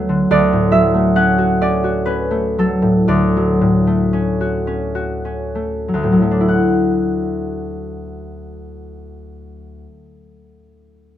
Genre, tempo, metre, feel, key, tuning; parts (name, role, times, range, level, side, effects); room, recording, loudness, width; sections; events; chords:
classical, solo harp piece; 45-70 BPM; 3/4; rubato; D major; A4 = 441 Hz
concert harp; solo; 0.0-10.1 s; D2 to F#5; -15 LUFS; equal
light reverb; -14 LUFS; side -11 dB against mid
0.0-6.5 A section; 6.5-9.9 B section
slowing down 0.0-6.5
0.3 Dmaj7; 6.5 Dadd9